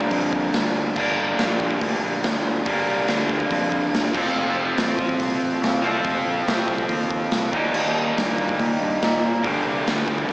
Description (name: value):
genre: garage rock duo or trio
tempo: 142 BPM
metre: 4/4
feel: straight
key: G minor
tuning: A4 = 440 Hz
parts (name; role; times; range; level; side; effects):
- raw garage guitar; riff; 0.0-10.3 s; G2 to Bb4; -22 LUFS; equal; overdrive
- growling fingered electric bass; bass; 0.0-10.3 s; F1 to Bb2; -28 LUFS; equal; overdrive
- raw garage drum kit; drums; 0.0-10.3 s; crash cymbal, hi-hat, kick drum, snare drum; -25 LUFS; equal; cassette tape
room: little or no reverb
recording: home recording on cassette, small speaker sound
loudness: -19 LUFS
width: side -24 dB against mid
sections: 0.0-10.3 A section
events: none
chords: 0.0 Gm; 4.1 F; 7.5 Eb; 9.4 Gm